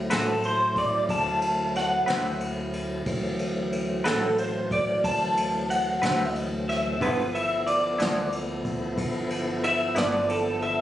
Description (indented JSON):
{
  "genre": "slow blues",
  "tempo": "61 BPM (dotted quarters)",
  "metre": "12/8",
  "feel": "straight",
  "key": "D mixolydian",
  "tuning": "A4 = 441 Hz",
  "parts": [
    { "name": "tonewheel organ", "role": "sustained chords", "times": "0.0-10.8 s", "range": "E3 to A4", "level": "-30 LUFS", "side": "equal", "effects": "slow rotary speaker, overdrive, chorus vibrato" },
    { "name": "upright bass", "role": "bass", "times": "0.0-10.8 s", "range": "G1 to D2", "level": "-36 LUFS", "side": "left 1 dB", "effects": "none" },
    { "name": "electric guitar through a small old amp", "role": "second line", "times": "0.1-10.8 s", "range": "A4 to A5", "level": "-25 LUFS", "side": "equal", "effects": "ensemble chorus" },
    { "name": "electric guitar through a small old amp", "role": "accompaniment", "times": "0.1-10.2 s", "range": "G2 to B4", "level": "-28 LUFS", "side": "left 1 dB", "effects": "harmonic tremolo" },
    { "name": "jazz brush drum kit", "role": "drums", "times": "0.1-10.8 s", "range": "kick drum, ride cymbal, snare drum", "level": "-32 LUFS", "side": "left 1 dB", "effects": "none" }
  ],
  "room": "small room ambience",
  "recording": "recorded on a phone in the room, studio reverb, nothing above 10.9 kHz",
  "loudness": "-23 LUFS",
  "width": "side -12 dB against mid",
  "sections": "0.0-10.8 A section",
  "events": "clean electric guitar solo 0.0-10.8",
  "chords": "0.0 D9; 7.0 G13"
}